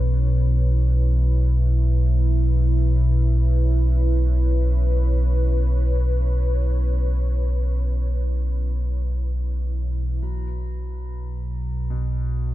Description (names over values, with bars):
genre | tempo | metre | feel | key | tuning
ambient | free time | none | none | unclear | A4 = 440 Hz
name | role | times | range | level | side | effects
dark analog pad | sustained chords | 0.0-10.2 s | E4 to C#5 | -31 LUFS | right 1 dB | chorus
deep rumbling drone | drone | 0.0-12.5 s | B1 to B2 | -19 LUFS | equal | built-in reverb
bronze singing bowl | texture | 10.2-12.5 s | F#3 to F#4 | -40 LUFS | left 3 dB | none
warm baby grand piano | arpeggios | 11.9-12.5 s | B2 | -40 LUFS | left 4 dB | none
room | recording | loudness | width
light reverb, small room ambience | dark, warm production | -19 LUFS | side -15 dB against mid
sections
0.0-10.2 A section; 10.2-12.5 B section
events
fade-in on analog synth pad 0.0-10.2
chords
0.0 Bsus2; 10.2 B5